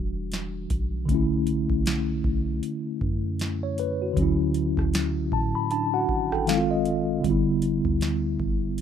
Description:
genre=contemporary R&B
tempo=78 BPM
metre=4/4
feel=swing 58% on 16ths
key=unclear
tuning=A4 = 441 Hz
part: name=mellow tine electric piano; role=accompaniment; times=0.0-8.8 s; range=D3 to B5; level=-25 LUFS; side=equal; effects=medium stereo tremolo
part: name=soft 808-style bass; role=bass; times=0.0-8.8 s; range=E1 to A2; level=-30 LUFS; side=equal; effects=none
part: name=booming analog drum machine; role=drums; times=0.3-8.8 s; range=hi-hat, kick drum, rim click, snare drum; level=-29 LUFS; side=equal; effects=none
room=little or no reverb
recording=rough home demo mix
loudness=-23 LUFS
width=side -8 dB against mid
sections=0.0-8.8 A section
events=tine electric piano fill 4.9-7.2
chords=0.0 Em9; 1.1 Bm11; 4.2 Dmaj9; 6.5 G#6; 7.2 G6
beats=0.32 | 1.09 1.86 2.63 3.40 | 4.17 4.93 5.70 6.47 | 7.24 8.01 8.78

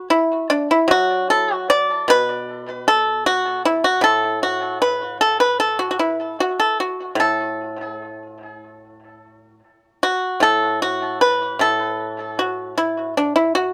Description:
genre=chinese traditional, Chinese solo plucked strings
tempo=76 BPM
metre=4/4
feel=rubato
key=unclear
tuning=A4 = 437 Hz
part: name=pipa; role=solo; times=0.0-13.7 s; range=A2 to D5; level=-19 LUFS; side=equal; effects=tape echo
room=light reverb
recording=none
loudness=-19 LUFS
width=mono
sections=0.0-13.7 A section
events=none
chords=none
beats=0.09 0.89 1.69 | 2.48 3.25 4.02 4.79 | 5.58 6.37 7.17 7.98 | 8.81 9.62 10.41 11.21 | 11.99 12.77 13.54

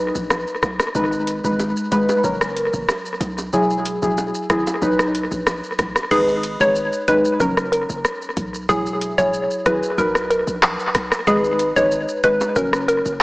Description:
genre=dancehall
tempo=93 BPM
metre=4/4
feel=straight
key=G# minor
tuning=A4 = 439 Hz
part: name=deep mellow chord stab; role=accompaniment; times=0.0-13.2 s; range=F#3 to B4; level=-21 LUFS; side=equal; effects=chorus, phaser, analog delay
part: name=warm 808-style bass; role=bass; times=0.0-13.2 s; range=E1 to B1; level=-30 LUFS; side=equal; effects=none
part: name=booming analog drum machine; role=drums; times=0.2-13.2 s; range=crash cymbal, handclaps, hi-hat, kick drum, rim click, shaker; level=-22 LUFS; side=equal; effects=analog delay
part: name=bongos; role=percussion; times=0.3-6.1, 11.8-12.6 s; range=none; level=-30 LUFS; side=right 1 dB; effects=none
part: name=hollow square pluck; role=melody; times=6.1-13.0 s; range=G#4 to C#5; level=-19 LUFS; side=equal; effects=chorus, analog delay
room=moderate plate reverb, RT60 2.5 s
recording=echo-heavy mix, small speaker sound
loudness=-17 LUFS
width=side -22 dB against mid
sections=0.0-6.1 A section; 6.1-13.2 B section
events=none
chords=0.0 B; 0.9 G#m; 2.2 F#; 3.5 Eadd9; 4.8 B; 6.1 G#m; 7.4 F#; 8.7 Eadd9; 10.0 B; 11.3 G#m; 12.6 F#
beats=0.30 | 0.95 1.59 2.24 2.88 | 3.53 4.17 4.82 5.46 | 6.11 6.75 7.40 8.04 | 8.69 9.34 9.98 10.63 | 11.27 11.92 12.56 13.21

